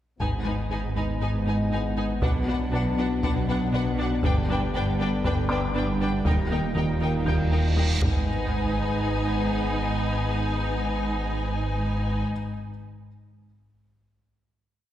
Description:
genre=cinematic, hybrid orchestral and electronic film score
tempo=119 BPM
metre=4/4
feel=straight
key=G# harmonic minor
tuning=A4 = 442 Hz
part: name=rich symphonic violin section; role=melody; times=0.2-12.2 s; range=F#5 to G#5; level=-35 LUFS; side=left 3 dB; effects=none
part: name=warm symphonic violin section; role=second line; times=0.2-12.2 s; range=A#4 to B4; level=-37 LUFS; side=left 3 dB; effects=none
part: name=bright symphonic viola section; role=accompaniment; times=0.2-12.2 s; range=D4 to D#4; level=-34 LUFS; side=right 1 dB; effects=none
part: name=clear trombone section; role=sustained chords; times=0.2-12.2 s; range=G#2 to G#3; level=-37 LUFS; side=right 1 dB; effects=none
part: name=dark analog pad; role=sustained chords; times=0.2-12.2 s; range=F#3 to G5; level=-34 LUFS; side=equal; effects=none
part: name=warm French horn section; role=sustained chords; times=0.2-12.2 s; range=A#3 to D#4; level=-36 LUFS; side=left 2 dB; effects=none
part: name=resonant blip pluck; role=arpeggios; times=0.2-7.9 s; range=D#3 to B4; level=-38 LUFS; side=right 1 dB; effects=none
part: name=rubbery square bass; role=riff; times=0.2-7.9 s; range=D#2 to B3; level=-32 LUFS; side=left 1 dB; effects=none
part: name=dark symphonic cello section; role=bass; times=0.2-12.2 s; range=D#2 to B2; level=-31 LUFS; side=equal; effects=none
part: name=sub bass with octave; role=bass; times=0.2-12.2 s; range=D#1 to B1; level=-32 LUFS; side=equal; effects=none
part: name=warm studio double bass section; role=bass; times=0.2-12.2 s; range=G1 to D#2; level=-31 LUFS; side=right 1 dB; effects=none
part: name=solo taiko drums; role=drums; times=0.2-9.0 s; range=none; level=-29 LUFS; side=equal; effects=none
part: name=felt-muted upright piano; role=texture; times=0.2-8.3 s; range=D5 to G6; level=-39 LUFS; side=left 2 dB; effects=digital delay
part: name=reverse cymbal and sub drop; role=sound effects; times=7.2-10.3 s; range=none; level=-35 LUFS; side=right 1 dB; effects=none
room=wet scoring stage reverb, RT60 1.7 s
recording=heard from further back in the room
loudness=-23 LUFS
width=side -12 dB against mid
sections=0.2-8.3 theme; 8.3-12.3 final hit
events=reverse cymbal 7.2-8.3; impact 8.3-10.3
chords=0.2 G#m; 2.2 Bm; 4.2 G; 6.3 D#; 8.0 G#m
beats=| 0.21 0.71 1.21 1.72 | 2.22 2.73 3.23 3.73 | 4.24 4.74 5.25 5.75 | 6.26 6.76 7.26 7.77 | 8.27 8.78 9.28 9.79 | 10.29 10.79 11.30 11.80

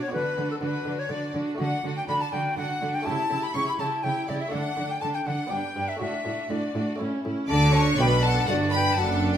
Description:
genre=classical, baroque-style concerto movement with solo episodes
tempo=122 BPM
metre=3/4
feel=straight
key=D major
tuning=A4 = 440 Hz
part: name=clear chamber violin section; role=melody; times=0.0-9.4 s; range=E4 to D6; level=-33 LUFS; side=left 3 dB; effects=none
part: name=hollow silver concert flute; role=melody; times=0.0-9.3 s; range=A4 to C#6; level=-29 LUFS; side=left 2 dB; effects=none
part: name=clear chamber violin section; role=second line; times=0.0-9.4 s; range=F#4 to C#6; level=-33 LUFS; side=left 2 dB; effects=none
part: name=buff-stop harpsichord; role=accompaniment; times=0.0-9.4 s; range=F#2 to A4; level=-36 LUFS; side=equal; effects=none
part: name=rich chamber viola section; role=accompaniment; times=0.0-9.4 s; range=C#4 to E4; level=-31 LUFS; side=right 2 dB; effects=none
part: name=warm chamber cello section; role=bass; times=0.1-9.4 s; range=F#2 to D3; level=-29 LUFS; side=right 1 dB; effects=none
part: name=rich chamber double bass section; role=bass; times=7.5-9.4 s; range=F#1 to D2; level=-27 LUFS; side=right 3 dB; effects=none
room=wet recital hall reverb, RT60 1.5 s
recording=none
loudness=-23 LUFS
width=side -10 dB against mid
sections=0.0-7.5 A section; 7.5-9.4 B section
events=none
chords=0.1 Bm/D; 1.6 D; 3.1 A7/C#; 4.5 D5; 5.5 G; 6.0 D/A; 7.0 A; 7.5 D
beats=| 0.12 0.61 1.10 | 1.59 2.08 2.57 | 3.06 3.55 4.04 | 4.53 5.02 5.51 | 6.01 6.50 7.00 | 7.50 7.99 8.48 | 8.97

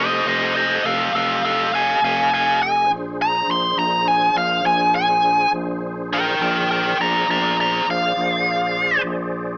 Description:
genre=slow blues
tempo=68 BPM (dotted quarters)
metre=12/8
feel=straight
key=unclear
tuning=A4 = 440 Hz
part: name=biting lead guitar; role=melody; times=0.0-9.0 s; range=A4 to C6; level=-17 LUFS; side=equal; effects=overdrive
part: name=tonewheel organ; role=sustained chords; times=0.0-9.6 s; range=D4 to Eb5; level=-28 LUFS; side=equal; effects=slow rotary speaker, chorus vibrato
part: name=growling FM bass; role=bass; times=0.0-9.6 s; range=F1 to Bb1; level=-28 LUFS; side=equal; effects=none
room=little or no reverb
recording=rough home demo mix, small speaker sound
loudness=-16 LUFS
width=side -32 dB against mid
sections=0.0-9.6 A section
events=lead electric guitar solo 0.0-9.6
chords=0.0 F9; 2.9 Bb9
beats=0.25 1.13 2.00 | 2.88 3.76 4.64 5.52 | 6.39 7.27 8.15 9.03

